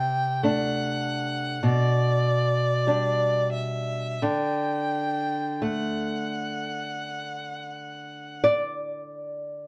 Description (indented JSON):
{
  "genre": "romantic duo for violin and classical guitar",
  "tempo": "42-53 BPM",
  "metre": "4/4",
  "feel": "rubato",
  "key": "unclear",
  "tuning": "A4 = 440 Hz",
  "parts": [
    { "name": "rich violin", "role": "melody", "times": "0.0-8.4 s", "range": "D5 to G5", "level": "-31 LUFS", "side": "equal", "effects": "none" },
    { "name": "nylon-string guitar", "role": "accompaniment", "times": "0.0-9.7 s", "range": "B2 to D5", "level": "-28 LUFS", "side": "equal", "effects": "none" }
  ],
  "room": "moderate small room ambience, RT60 0.5 s",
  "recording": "heard from further back in the room",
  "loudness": "-26 LUFS",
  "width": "mono",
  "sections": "0.0-9.7 A section",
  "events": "none",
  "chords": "0.0 D7/C; 1.6 G/B; 4.2 D"
}